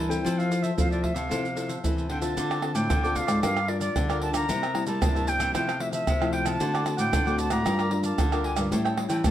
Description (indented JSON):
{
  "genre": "samba and choro",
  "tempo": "113 BPM",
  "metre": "4/4",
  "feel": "straight",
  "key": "D minor",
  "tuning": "A4 = 440 Hz",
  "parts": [
    { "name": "silver concert flute", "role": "melody", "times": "0.0-9.3 s", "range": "D5 to Bb5", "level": "-30 LUFS", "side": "equal", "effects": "none" },
    { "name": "cavaquinho", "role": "accompaniment", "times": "0.0-9.3 s", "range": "D4 to G5", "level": "-34 LUFS", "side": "right 1 dB", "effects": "none" },
    { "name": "nylon-string guitar", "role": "accompaniment", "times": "0.0-9.3 s", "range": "G2 to Bb4", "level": "-31 LUFS", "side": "left 3 dB", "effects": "none" },
    { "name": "nylon-string guitar", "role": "bass", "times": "0.0-9.3 s", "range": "G2 to G3", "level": "-29 LUFS", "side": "equal", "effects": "none" },
    { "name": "maracas, pandeiro, surdo and tamborim", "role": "percussion", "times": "0.1-9.3 s", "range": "none", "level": "-28 LUFS", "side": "right 1 dB", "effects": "none" }
  ],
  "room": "moderate studio reverb, RT60 0.6 s",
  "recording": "band playing live in one room",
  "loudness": "-23 LUFS",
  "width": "side -11 dB against mid",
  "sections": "0.0-2.4 A section; 2.4-9.3 B section",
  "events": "none",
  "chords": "0.3 Fmaj7; 2.4 Dm7; 3.4 Gm7; 4.5 C7; 5.5 Fmaj7/C; 6.6 D7; 7.7 Gm7; 8.7 A7",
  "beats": "| 0.26 0.78 1.31 1.84 | 2.37 2.90 3.43 3.96 | 4.49 5.02 5.55 6.08 | 6.60 7.13 7.66 8.19 | 8.72 9.25"
}